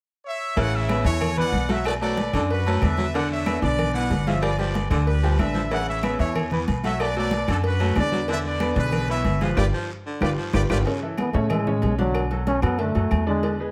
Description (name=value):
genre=latin, salsa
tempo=186 BPM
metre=4/4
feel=straight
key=A major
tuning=A4 = 439 Hz
part: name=bright trumpet section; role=melody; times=0.3-10.8 s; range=F4 to F#5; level=-30 LUFS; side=equal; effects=none
part: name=growling baritone saxophone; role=second line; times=0.6-10.8 s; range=C#3 to A3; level=-34 LUFS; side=equal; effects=none
part: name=bright grand piano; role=accompaniment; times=0.6-13.7 s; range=C#3 to D6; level=-30 LUFS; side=equal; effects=none
part: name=upright bass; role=bass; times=0.6-13.7 s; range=G1 to A2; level=-27 LUFS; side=equal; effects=none
part: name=agogo bells and timbales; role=percussion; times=0.6-13.6 s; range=none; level=-36 LUFS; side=equal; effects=none
part: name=congas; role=percussion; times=0.6-13.7 s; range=none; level=-32 LUFS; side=equal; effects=none
part: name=cowbell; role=percussion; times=0.6-13.6 s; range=none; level=-37 LUFS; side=equal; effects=none
part: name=guiro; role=percussion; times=0.6-10.8 s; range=none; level=-46 LUFS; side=equal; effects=none
part: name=claves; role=percussion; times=0.9-13.3 s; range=none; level=-42 LUFS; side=equal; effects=none
part: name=warm trombone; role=melody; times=11.2-13.6 s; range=F#3 to C#4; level=-27 LUFS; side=equal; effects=none
room=moderate large studio reverb, RT60 0.9 s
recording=none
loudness=-23 LUFS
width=mono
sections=0.6-10.9 A section; 10.9-13.7 B section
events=drum fill 9.6-10.9; band accent 9.6-10.9; trombone solo 10.9-13.7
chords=0.0 N.C.; 0.6 Aadd9; 1.9 Bm7; 3.1 E7(no3); 4.4 G7; 5.7 Aadd9; 7.0 Bm7; 8.3 E7; 9.6 G7; 10.9 Aadd9; 12.1 Bm7